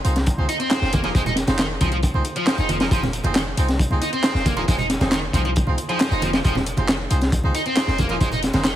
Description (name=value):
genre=breakbeat, breaks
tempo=136 BPM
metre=4/4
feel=straight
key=F minor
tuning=A4 = 440 Hz
part: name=bright horn section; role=stabs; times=0.0-8.7 s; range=Bb3 to C5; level=-28 LUFS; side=right 3 dB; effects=tape echo
part: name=warm 808-style bass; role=bass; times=0.0-8.8 s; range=F1 to C2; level=-24 LUFS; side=equal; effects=none
part: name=garage drum kit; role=drums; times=0.0-8.7 s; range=handclaps, hi-hat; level=-31 LUFS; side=equal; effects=none
part: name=crunchy breakbeat drum kit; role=drums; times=0.1-8.8 s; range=hi-hat, kick drum, snare drum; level=-22 LUFS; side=equal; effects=none
part: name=congas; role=percussion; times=0.2-8.6 s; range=none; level=-30 LUFS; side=right 3 dB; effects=none
part: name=overdriven electric guitar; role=riff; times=0.5-8.7 s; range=Eb3 to Eb4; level=-25 LUFS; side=equal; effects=tape echo
room=light reverb, studio reverb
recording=heavily compressed radio sound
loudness=-18 LUFS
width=side -12 dB against mid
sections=0.0-8.8 A section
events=none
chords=0.0 Fm7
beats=0.27 0.71 | 1.15 1.59 2.03 2.47 | 2.91 3.35 3.79 4.24 | 4.68 5.12 5.56 6.00 | 6.44 6.88 7.33 7.77 | 8.21 8.65